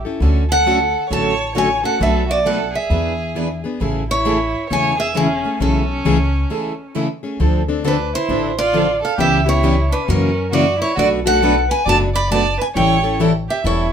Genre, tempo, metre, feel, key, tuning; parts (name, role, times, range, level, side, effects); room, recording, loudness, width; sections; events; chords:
acoustic string swing (jazz manouche); 134 BPM; 4/4; swing 63% on 8ths; A major; A4 = 440 Hz
picked steel-string acoustic guitar; melody; 0.0-13.9 s; G#4 to B5; -19 LUFS; equal
upright bass; bass; 0.0-13.9 s; E1 to F#2; -21 LUFS; equal
picked plugged-in steel-string acoustic guitar; accompaniment; 0.1-13.9 s; B2 to A4; -20 LUFS; left 4 dB
picked steel-string acoustic guitar; accompaniment; 0.2-13.9 s; B2 to B4; -24 LUFS; right 5 dB
warm violin; second line; 0.5-13.9 s; C#4 to D5; -23 LUFS; right 4 dB
moderate studio ambience, RT60 0.5 s; minimal, uncompressed stereo recording; -15 LUFS; side -8 dB against mid
0.0-7.4 A section; 7.4-13.9 B section
break 6.5-7.4
0.2 Dmaj7; 2.0 Bm7; 2.9 E7; 3.8 Amaj7; 7.4 Dm9; 9.2 C#m7b5; 10.1 F#7; 11.0 Bm7; 12.8 A7